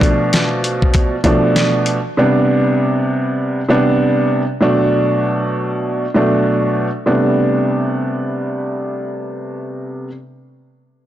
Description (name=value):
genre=hip hop, boom-bap hip-hop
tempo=98 BPM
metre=4/4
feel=swing 58% on 16ths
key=A minor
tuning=A4 = 440 Hz
part: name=dark upright piano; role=accompaniment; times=0.0-10.1 s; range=B2 to D4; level=-14 LUFS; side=right 1 dB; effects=cassette tape, high-pass filter, low-pass filter
part: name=dusty soul sampler-style drum kit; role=drums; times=0.0-2.0 s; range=hi-hat, kick drum, snare drum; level=-16 LUFS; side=left 1 dB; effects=none
room=light reverb, digital ambience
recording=blown-out, overdriven recording, overdrive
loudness=-14 LUFS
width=side -12 dB against mid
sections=0.0-7.1 A section; 7.1-9.5 B section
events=none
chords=0.0 Bm7b5; 2.2 Gadd11/C; 4.6 Bm7; 7.1 Am11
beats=0.33 0.94 1.55 | 2.17 2.78 3.39 4.00 | 4.61 5.23 5.84 6.45 | 7.06 7.67 8.29 8.90